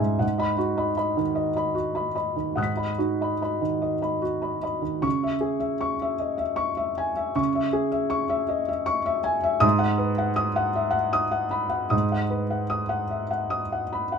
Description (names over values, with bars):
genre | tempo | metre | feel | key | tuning
neoclassical minimalist piano | 47-54 BPM (dotted quarters) | 6/8 | rubato | C# minor | A4 = 440 Hz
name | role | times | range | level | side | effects
felt-muted upright piano | solo | 0.0-14.2 s | C#2 to B6 | -23 LUFS | equal | none
room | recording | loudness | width
light reverb | minimal, uncompressed stereo recording | -23 LUFS | side -6 dB against mid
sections
0.0-5.0 A section; 5.0-14.2 B section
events
none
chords
0.2 G#m7; 5.0 C#m; 9.6 G#m7